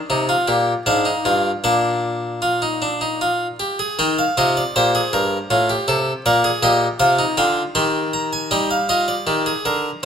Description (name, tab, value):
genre	classical, baroque-style 3-part fugue for harpsichord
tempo	79 BPM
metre	3/4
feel	straight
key	Eb major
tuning	A4 = 444 Hz
part	harpsichord	solo	0.0-10.0 s	G2 to C6	-16 LUFS	equal	none
room	moderate recital hall reverb, RT60 1.4 s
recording	close, detailed microphones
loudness	-16 LUFS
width	side -8 dB against mid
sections	0.0-4.0 A section; 4.0-8.5 B section; 8.5-10.1 A section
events	none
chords	0.0 Cm; 0.9 Fm/Ab; 1.6 Bb; 4.0 Eb; 5.5 F/A; 6.2 Bb; 7.8 Eb; 8.5 Eb/G